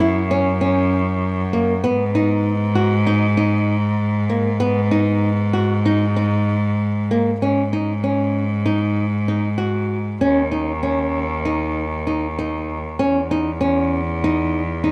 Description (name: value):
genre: contemporary instrumental, chamber music in an uneven meter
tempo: 194 BPM (eighths)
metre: 9/8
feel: straight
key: unclear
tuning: A4 = 440 Hz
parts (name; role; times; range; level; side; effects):
- flamenco guitar; arpeggios; 0.0-14.9 s; A#3 to F#4; -23 LUFS; equal; none
- bright cello; bass; 0.0-14.9 s; D#2 to G#2; -22 LUFS; equal; none
room: moderate recital hall reverb, RT60 1.5 s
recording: dark, warm production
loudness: -19 LUFS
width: mono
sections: 0.0-7.4 A section; 7.4-14.9 B section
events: none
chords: 0.0 F#5; 1.8 G#5; 10.2 C#sus2/D#; 13.0 C#madd9/E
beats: 0.00 0.31 0.62 0.92 1.23 1.53 | 1.84 2.15 2.45 2.76 3.06 3.37 3.67 3.98 4.29 | 4.60 4.91 5.22 5.53 5.84 6.15 6.47 6.79 7.10 | 7.42 7.73 8.04 8.35 8.67 8.98 9.29 9.60 9.91 | 10.22 10.53 10.84 11.14 11.45 11.77 12.07 12.38 12.69 | 13.00 13.31 13.62 13.92 14.23 14.54 14.84